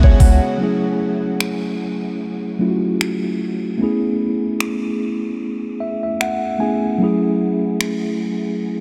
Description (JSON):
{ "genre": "contemporary R&B", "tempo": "75 BPM", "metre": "4/4", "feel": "swing 58% on 16ths", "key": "F# minor", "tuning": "A4 = 440 Hz", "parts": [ { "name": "mellow tine electric piano", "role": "accompaniment", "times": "0.0-8.8 s", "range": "F#3 to G#5", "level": "-21 LUFS", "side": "equal", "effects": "none" }, { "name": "chorused pulse-width pad", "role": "sustained chords", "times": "0.0-0.6 s", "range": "C#3 to F#4", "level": "-35 LUFS", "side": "equal", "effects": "none" }, { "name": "nylon-string guitar", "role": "arpeggios", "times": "0.0-0.6 s", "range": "C#5", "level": "-31 LUFS", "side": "equal", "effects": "analog delay" }, { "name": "smooth R&B drum kit", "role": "drums", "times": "0.0-8.0 s", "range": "finger snaps, hi-hat, kick drum", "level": "-18 LUFS", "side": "equal", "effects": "none" } ], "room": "moderate huge ambient reverb, RT60 8.5 s", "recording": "dreamy mix soaked in reverb", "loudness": "-20 LUFS", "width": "mono", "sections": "0.6-8.8 A section", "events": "tine electric piano fill 0.0-0.6, 5.4-7.0", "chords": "0.0 C#7sus4; 0.6 F#m7; 3.8 Amaj7; 7.0 F#m7" }